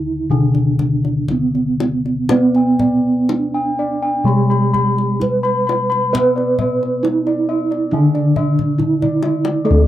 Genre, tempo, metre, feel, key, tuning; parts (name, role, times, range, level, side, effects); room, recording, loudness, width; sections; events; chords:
Javanese gamelan; 60-71 BPM; 4/4; straight; D pelog barang; A4 = 444 Hz
gamelan-type bronze metallophone; melody; 0.0-9.9 s; B3+20c to B4+20c; -18 LUFS; right 3 dB
gamelan-type bronze metallophone; accompaniment; 0.0-9.9 s; D3 to B3+20c; -21 LUFS; left 1 dB
gamelan-type bossed gongs; bass; 0.0-9.9 s; D2 to B4+20c; -20 LUFS; left 1 dB
kendang; percussion; 0.5-9.6 s; -25 LUFS; left 4 dB
gamelan-type bossed gongs; arpeggios; 2.3-9.9 s; D5 to B5+20c; -23 LUFS; left 3 dB
moderate small room reverb, RT60 0.5 s; dry, close 1970s-style studio recording; -14 LUFS; side -12 dB against mid
0.0-9.7 A section
drum fill 8.6-9.7